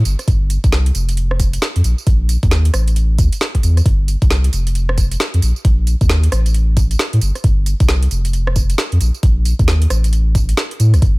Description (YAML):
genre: UK garage, two-step garage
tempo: 134 BPM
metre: 4/4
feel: swing 62% on 16ths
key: unclear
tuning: A4 = 439 Hz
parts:
  - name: saturated sub bass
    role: bass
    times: 0.0-11.2 s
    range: F1 to A2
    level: -14 LUFS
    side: equal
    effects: tube saturation
  - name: garage drum kit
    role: drums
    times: 0.1-11.1 s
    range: hi-hat, rim click, snare drum, tambourine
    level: -22 LUFS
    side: right 1 dB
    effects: overdrive, studio reverb
  - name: electronic kick drum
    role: drums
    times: 0.3-11.1 s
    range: none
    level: -14 LUFS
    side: equal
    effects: overdrive, studio reverb
room: digital ambience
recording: none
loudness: -13 LUFS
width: side -24 dB against mid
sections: 0.0-11.2 A section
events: none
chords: none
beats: | 0.28 0.72 1.17 1.62 | 2.07 2.51 2.96 3.41 | 3.86 4.30 4.75 5.20 | 5.65 6.10 6.54 6.99 | 7.44 7.89 8.34 8.78 | 9.23 9.68 10.13 10.57 | 11.02